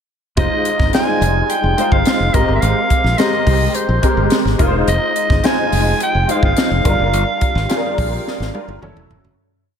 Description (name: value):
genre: polished 1980s jazz-funk pop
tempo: 106 BPM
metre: 4/4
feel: straight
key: F dorian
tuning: A4 = 440 Hz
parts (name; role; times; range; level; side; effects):
- raspy soprano saxophone; melody; 0.4-8.8 s; C5 to Ab5; -19 LUFS; equal; slapback echo
- clear grand piano; accompaniment; 0.4-9.4 s; Gb3 to C5; -19 LUFS; left 1 dB; ensemble chorus, slapback echo
- modern bright fingered electric bass; bass; 0.4-9.3 s; E1 to C2; -18 LUFS; equal; none
- crisp fusion drum kit; drums; 0.4-9.4 s; hi-hat, kick drum, snare drum, toms; -19 LUFS; equal; none
room: moderate lush hall reverb, RT60 2.2 s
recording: big arena sound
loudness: -13 LUFS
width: side -8 dB against mid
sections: 0.4-9.4 verse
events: fade-out 7.1-9.4; drum fill 8.3-9.4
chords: 0.4 Fm7; 2.3 Abmaj9; 4.6 Fm7; 6.9 Gm7; 8.8 Gbm7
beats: | 0.37 0.93 1.50 2.06 | 2.62 3.19 3.75 4.31 | 4.88 5.44 6.00 6.57 | 7.13 7.70 8.26 8.82